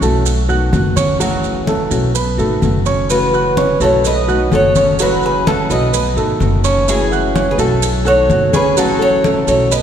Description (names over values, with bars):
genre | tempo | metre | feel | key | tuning
latin, Cuban son and guajira | 127 BPM | 4/4 | straight | unclear | A4 = 439 Hz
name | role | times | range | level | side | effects
nylon-string guitar | accompaniment | 0.0-9.8 s | C#3 to F#4 | -21 LUFS | left 2 dB | none
warm concert grand piano | arpeggios | 0.0-9.8 s | F#3 to F#6 | -18 LUFS | right 3 dB | none
upright bass | bass | 0.0-9.8 s | F#1 to B1 | -18 LUFS | equal | none
congas | percussion | 0.0-9.8 s | none | -22 LUFS | left 2 dB | none
maracas | percussion | 0.0-9.8 s | none | -26 LUFS | right 6 dB | none
Cuban tres | melody | 3.1-9.8 s | G#4 to D#5 | -16 LUFS | equal | none
nylon-string guitar | second line | 3.1-9.8 s | E4 to B4 | -23 LUFS | left 1 dB | none
room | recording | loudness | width
wet church reverb, RT60 2.6 s | recorded in a church or concert hall | -12 LUFS | side -9 dB against mid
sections
0.0-9.8 A section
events
none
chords
0.3 B7; 1.2 F#m7; 2.1 B7; 3.1 F#m7; 4.0 B7; 5.0 F#m7; 5.9 B7; 6.9 F#m7; 7.8 B7; 8.8 F#m7